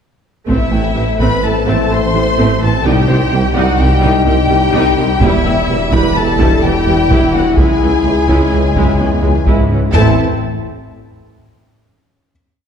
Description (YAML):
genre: cinematic, hybrid orchestral and electronic film score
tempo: 127 BPM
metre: 5/4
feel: straight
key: A dorian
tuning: A4 = 437 Hz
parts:
  - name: rich symphonic violin section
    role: melody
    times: 0.5-10.2 s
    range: E5 to C6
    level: -20 LUFS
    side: left 3 dB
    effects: none
  - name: clear symphonic violin section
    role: second line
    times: 0.5-10.2 s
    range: E4 to C5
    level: -21 LUFS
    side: left 1 dB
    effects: none
  - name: rich symphonic viola section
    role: accompaniment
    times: 0.5-10.2 s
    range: C3 to E4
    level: -19 LUFS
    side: right 2 dB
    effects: none
  - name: mellow French horn section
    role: sustained chords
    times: 0.5-10.1 s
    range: G3 to E4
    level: -18 LUFS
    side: left 3 dB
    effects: none
  - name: detuned saw bass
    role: bass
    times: 0.5-10.2 s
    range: E1 to C#2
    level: -19 LUFS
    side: equal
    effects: none
  - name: rich studio double bass section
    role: bass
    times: 0.5-10.2 s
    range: E1 to C#2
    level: -20 LUFS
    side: right 2 dB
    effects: none
  - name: warm symphonic cello section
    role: bass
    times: 0.5-10.2 s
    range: C#2 to C3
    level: -20 LUFS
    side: right 2 dB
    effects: none
  - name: warm tuba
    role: bass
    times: 0.5-10.1 s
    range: E1 to C#2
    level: -21 LUFS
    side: right 2 dB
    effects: none
  - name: taiko ensemble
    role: drums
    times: 0.5-1.4, 5.2-10.0 s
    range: none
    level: -18 LUFS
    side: equal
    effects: none
  - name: bright grand piano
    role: texture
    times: 0.7-10.0 s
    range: C#4 to G5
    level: -28 LUFS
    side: left 3 dB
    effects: none
room: wet scoring stage reverb, RT60 1.7 s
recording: heard from further back in the room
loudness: -10 LUFS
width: side -7 dB against mid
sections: 0.5-9.9 theme; 9.9-12.3 final chord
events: none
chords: 0.5 Am; 2.8 Cm; 5.2 Em; 7.6 C#m; 9.9 Am